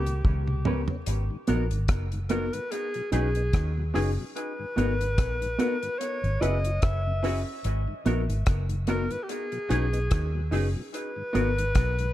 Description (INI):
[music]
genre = lovers rock reggae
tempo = 73 BPM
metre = 4/4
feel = swing 56% on 16ths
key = G# minor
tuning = A4 = 435 Hz
[part]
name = breathy alto saxophone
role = melody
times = 0.0-12.1 s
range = G4 to E5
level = -32 LUFS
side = left 1 dB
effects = tape echo
[part]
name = vintage muted fingered electric bass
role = bass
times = 0.0-12.1 s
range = F#1 to D#2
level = -27 LUFS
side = equal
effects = none
[part]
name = mellow tonewheel organ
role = accompaniment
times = 0.1-12.1 s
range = D#2 to F#4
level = -40 LUFS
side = left 4 dB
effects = slow rotary speaker
[part]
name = warm concert grand piano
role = accompaniment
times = 0.1-11.5 s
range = B3 to B4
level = -34 LUFS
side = left 2 dB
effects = dub echo
[part]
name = deep reggae drum kit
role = drums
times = 0.1-12.1 s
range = hi-hat, kick drum, rim click, toms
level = -28 LUFS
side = equal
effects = dub echo
[part]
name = electric guitar with an envelope filter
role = stabs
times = 0.7-11.5 s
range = B3 to B4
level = -32 LUFS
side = right 2 dB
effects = dub echo
[sound]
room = small room reverb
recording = dark, warm production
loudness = -25 LUFS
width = side -14 dB against mid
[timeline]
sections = 0.0-1.1 A section; 1.1-12.1 B section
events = drum fill 0.2-1.1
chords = 0.0 D#7b13; 1.1 G#m9; 2.7 B6; 4.4 G#m9; 6.0 F#7sus4; 7.6 G#m9; 9.3 B6; 10.9 G#m9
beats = 0.25 | 1.07 1.89 2.72 3.54 | 4.36 5.18 6.00 6.83 | 7.65 8.47 9.29 10.11 | 10.93 11.75